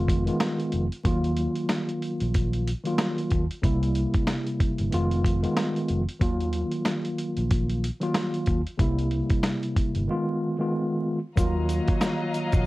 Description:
hip hop, boom-bap hip-hop; 93 BPM; 4/4; swing 58% on 16ths; Eb minor; A4 = 443 Hz
mellow tine electric piano; accompaniment; 0.0-12.7 s; C3 to F4; -27 LUFS; equal; medium stereo tremolo, high-pass filter, low-pass filter
fingered electric bass; bass; 0.0-12.7 s; F1 to Eb2; -27 LUFS; equal; transformer saturation
dusty soul sampler-style drum kit; drums; 0.1-12.7 s; hi-hat, kick drum, snare drum; -26 LUFS; equal; vintage 12-bit sampler grit
dark chamber string section; sustained chords; 11.4-12.7 s; Gb3 to Bb5; -32 LUFS; left 2 dB; high-pass filter, low-pass filter
egg shaker; percussion; 11.4-12.7 s; -49 LUFS; left 2 dB
moderate studio reverb, RT60 0.6 s; worn, warbling old tape, cassette tape, vinyl crackle, warbly pitch drift; -23 LUFS; side -19 dB against mid
0.0-11.4 A section; 11.4-12.7 B section
0.0 Fm7b5; 1.1 Ebmadd9; 3.6 C7; 4.9 Fm7b5; 6.2 Ebmadd9; 8.8 C7; 10.1 Fm7b5; 11.4 Ebmadd9

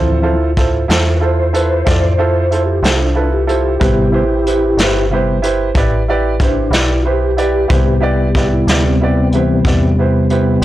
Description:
slow blues; 62 BPM (dotted quarters); 12/8; straight; A minor; A4 = 441 Hz
clear upright piano; accompaniment; 0.0-10.6 s; E4 to D5; -17 LUFS; right 4 dB
mellow tonewheel organ; sustained chords; 0.0-10.6 s; C3 to C5; -16 LUFS; left 2 dB; slow rotary speaker, chorus vibrato
metallic FM bass; bass; 0.0-10.6 s; G1 to F2; -17 LUFS; equal
vintage brush drum kit; drums; 0.6-10.6 s; hi-hat, kick drum, snare drum; -17 LUFS; equal
light reverb; blown-out, overdriven recording, overdrive; -11 LUFS; side -14 dB against mid
0.0-10.6 A section
tonewheel organ solo 0.0-10.6
0.0 Dm7; 3.8 Am7

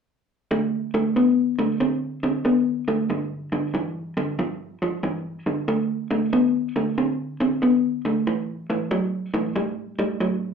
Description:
blues; 93 BPM; 4/4; swing 66% on 8ths; D mixolydian; A4 = 440 Hz
electric guitar through a small old amp; solo; 0.5-10.5 s; G2 to C4; -21 LUFS; equal; slapback echo
wet club reverb, RT60 0.6 s; live gig heard through the venue's PA, club reverb; -21 LUFS; side -6 dB against mid
0.5-10.5 A section
0.5 D5; 3.1 G5; 5.7 D5; 8.3 A5

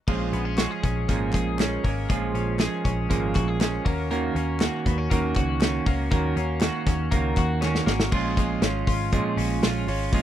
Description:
jangly indie pop; 120 BPM; 4/4; straight; A4 = 441 Hz
clean electric guitar; accompaniment; 0.1-10.2 s; A#2 to G#4; -27 LUFS; right 6 dB
twelve-string electric guitar; arpeggios; 0.1-10.2 s; E#3 to G#4; -30 LUFS; left 6 dB; wide subtle chorus, tape echo
vintage muted picked electric bass; bass; 0.1-10.2 s; G#1 to D#2; -28 LUFS; left 1 dB
loose indie drum kit; drums; 0.1-10.2 s; crash cymbal, hi-hat, kick drum, snare drum; -25 LUFS; equal
group handclap; percussion; 0.6-7.7 s; -40 LUFS; left 7 dB
little or no reverb; -22 LUFS; side -11 dB against mid
0.1-8.1 A section; 8.1-10.2 B section
drum fill 7.6-8.1
0.1 A#m7; 3.9 D#m7; 8.1 A#m7

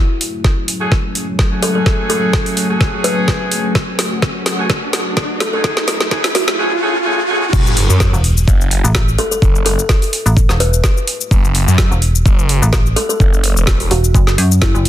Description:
bass house; 127 BPM; 4/4; swing 54% on 16ths; F# minor; A4 = 440 Hz
dark analog pad; sustained chords; 0.0-14.9 s; F#3 to G#4; -22 LUFS; left 1 dB; chorus, sidechain pumping
riser and sub drop; sound effects; 0.0-9.4 s; -23 LUFS; equal
garage drum kit; drums; 0.2-14.9 s; crash cymbal, hi-hat, shaker, snare drum; -18 LUFS; equal
electronic kick drum; drums; 0.4-14.7 s; -14 LUFS; equal
clear horn section; stabs; 0.8-7.4 s; A3 to G#4; -21 LUFS; right 1 dB; sidechain pumping, low-pass filter, tape echo
kalimba; melody; 1.6-14.9 s; E4 to B4; -22 LUFS; left 1 dB; tape echo
phased detuned saw bass; bass; 7.5-13.9 s; E1 to F#2; -15 LUFS; equal; phaser, overdrive, sidechain pumping
metallic FM bass; bass; 8.1-14.9 s; E1 to F#2; -13 LUFS; equal; overdrive, sidechain pumping
light reverb, digital ambience; dense, heavily limited modern master, high-pass filter; -12 LUFS; side -12 dB against mid
0.0-7.5 A section; 7.5-14.9 B section
build-up 0.0-7.5; drum fill 0.0-6.6; riser 0.0-7.5; filter sweep 0.0-7.5; drop 7.5-14.9; impact 7.5-9.4
0.0 F#madd9

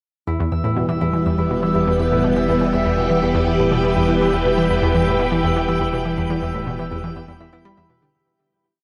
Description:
ambient, sequencer-driven space music; 122 BPM; 4/4; straight; E minor; A4 = 442 Hz
phased string machine; sustained chords; 0.3-8.1 s; E3 to B4; -22 LUFS; equal; ensemble chorus, phaser
concert harp; arpeggios; 0.3-8.8 s; E4 to E6; -29 LUFS; equal; delay
analog pluck; riff; 0.3-8.1 s; E2 to B3; -23 LUFS; equal; chorus, delay
round analog bass; bass; 0.3-8.1 s; E1; -31 LUFS; equal
twinkling granular texture; texture; 1.5-8.2 s; G5; -38 LUFS; equal; built-in reverb
wet huge ambient reverb, RT60 8.7 s; -19 LUFS; mono
0.3-8.1 A section
fade-in on synth texture 0.3-8.1; fade-out 5.5-8.1
0.3 Em

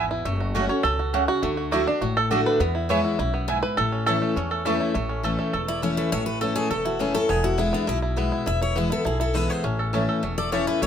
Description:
bluegrass; 204 BPM; 4/4; straight; A major; A4 = 445 Hz
bluegrass banjo; melody; 0.0-10.9 s; A3 to C#5; -27 LUFS; right 3 dB
picked steel-string acoustic guitar; accompaniment; 0.0-10.9 s; E2 to F#4; -26 LUFS; left 2 dB
mandolin; stabs; 0.0-4.8, 9.9-10.6 s; A3 to A5; -28 LUFS; right 6 dB
upright bass; bass; 0.0-10.9 s; E1 to E2; -28 LUFS; equal
picked steel-string acoustic guitar; melody; 5.7-10.9 s; D4 to E5; -27 LUFS; left 2 dB
moderate studio reverb, RT60 0.9 s; minimal, uncompressed stereo recording; -21 LUFS; side -8 dB against mid
0.0-5.0 A section; 5.0-10.9 B section
five-string banjo solo 0.0-5.0
0.3 F#m; 1.4 D; 2.6 E; 3.8 A; 7.3 E; 9.6 A

